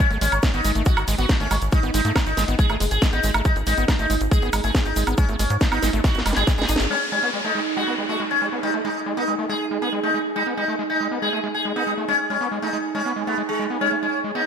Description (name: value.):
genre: psychedelic trance.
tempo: 139 BPM.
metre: 4/4.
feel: straight.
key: G# phrygian.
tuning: A4 = 442 Hz.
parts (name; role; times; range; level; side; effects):
sitar; melody; 0.0-14.5 s; G#3 to G#4; -23 LUFS; equal; phaser, sidechain pumping, diffuse ambient delay.
screaming distorted acid line; riff; 0.0-14.4 s; G#3 to D#4; -28 LUFS; equal; distortion, chorus, auto-pan, sidechain pumping, analog delay.
electronic kick drum; drums; 0.0-6.6 s; none; -19 LUFS; equal; none.
garage drum kit; drums; 0.0-7.0 s; crash cymbal, hi-hat, snare drum, woodblock; -26 LUFS; right 1 dB; low-pass filter on hats, low-pass filter on snare, low-pass filter on perc, low-pass filter on cymbals.
egg shaker; percussion; 0.0-6.9 s; none; -36 LUFS; left 6 dB; none.
tight sequencer bass; bass; 0.1-6.9 s; F#1 to G#2; -24 LUFS; equal; tube saturation.
downlifter; sound effects; 6.9-10.4 s; none; -31 LUFS; equal; none.
warbly tape-like pad; texture; 7.3-14.5 s; D#4 to G#5; -30 LUFS; right 7 dB; chorus, built-in reverb, sidechain pumping.
room: moderate plate reverb, RT60 1.6 s, digital ambience.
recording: dreamy mix soaked in reverb.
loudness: -19 LUFS.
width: side -7 dB against mid.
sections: 0.0-6.9 A section; 6.9-14.5 B section.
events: drop 0.0-6.9; drum fill 6.0-6.9; band accent 6.8.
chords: 0.0 G#5.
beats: | 0.00 0.43 0.86 1.29 | 1.73 2.16 2.59 3.02 | 3.45 3.88 4.32 4.75 | 5.18 5.61 6.04 6.47 | 6.90 7.34 7.77 8.20 | 8.63 9.06 9.49 9.93 | 10.36 10.79 11.22 11.65 | 12.08 12.52 12.95 13.38 | 13.81 14.24.